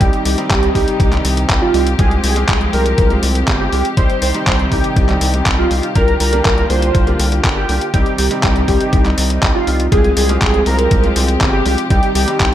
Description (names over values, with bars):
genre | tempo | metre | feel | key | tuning
italo disco | 121 BPM | 4/4 | straight | C minor | A4 = 439 Hz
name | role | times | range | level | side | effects
wide unison lead | melody | 0.0-12.5 s | F4 to C5 | -19 LUFS | right 1 dB | ensemble chorus, vintage 12-bit sampler grit, tape echo
warm studio string section | sustained chords | 0.0-12.5 s | C3 to G4 | -22 LUFS | left 2 dB | none
bright grand piano | stabs | 0.0-12.5 s | G3 to G4 | -22 LUFS | right 2 dB | none
round analog bass | bass | 0.0-12.5 s | G1 to C2 | -17 LUFS | equal | none
detuned 8-bit digital drum machine | drums | 0.0-12.5 s | handclaps, hi-hat | -20 LUFS | left 1 dB | small room ambience, gated reverb
electronic kick drum | drums | 0.0-12.5 s | none | -16 LUFS | equal | small room ambience
room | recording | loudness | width
digital ambience | none | -12 LUFS | side -11 dB against mid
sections
0.0-12.5 A section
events
none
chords
0.0 Cm; 2.0 Fmadd9/C; 4.0 Cm; 6.0 Gm7/C; 7.9 Cm; 9.9 Fmadd9/C; 11.9 Cm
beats
| 0.01 0.50 1.00 1.49 | 1.99 2.48 2.98 3.48 | 3.97 4.47 4.96 5.46 | 5.96 6.45 6.95 7.44 | 7.94 8.44 8.93 9.43 | 9.92 10.42 10.91 11.41 | 11.91 12.40